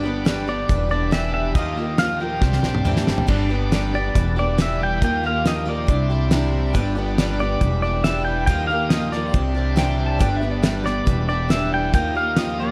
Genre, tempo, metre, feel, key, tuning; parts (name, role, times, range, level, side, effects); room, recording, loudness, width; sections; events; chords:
folk rock and heartland rock; 139 BPM; 4/4; straight; G mixolydian; A4 = 440 Hz
picked twelve-string acoustic guitar; accompaniment; 0.0-12.7 s; G2 to G4; -29 LUFS; equal; slapback echo
bright tonewheel organ; sustained chords; 0.0-12.7 s; G4 to Eb6; -38 LUFS; equal; slow rotary speaker
overdriven electric guitar; riff; 0.0-12.7 s; E2 to G4; -31 LUFS; equal; spring reverb
upright bass; bass; 0.0-12.7 s; E1 to Eb2; -26 LUFS; equal
damped 70s drum kit; drums; 0.3-12.5 s; crash cymbal, hi-hat, kick drum, snare drum, toms; -24 LUFS; equal
pedal steel guitar; melody; 0.5-12.7 s; D5 to G5; -27 LUFS; equal; slapback echo, tape echo
clean lap steel guitar; second line; 9.8-10.8 s; D5 to A5; -31 LUFS; equal; slapback echo
light reverb, small room ambience; -21 LUFS; mono
0.0-3.3 A section; 3.3-12.7 A section
drum fill 2.4-3.3
0.0 G; 0.7 Em7; 1.6 Ebadd9; 2.4 Cadd9; 3.3 G; 4.2 Em7; 5.0 Ebadd9; 5.9 Cadd9; 6.8 G; 7.6 Em7; 8.5 Ebadd9; 9.3 Cadd9; 10.2 G; 11.1 Em7; 11.9 Ebadd9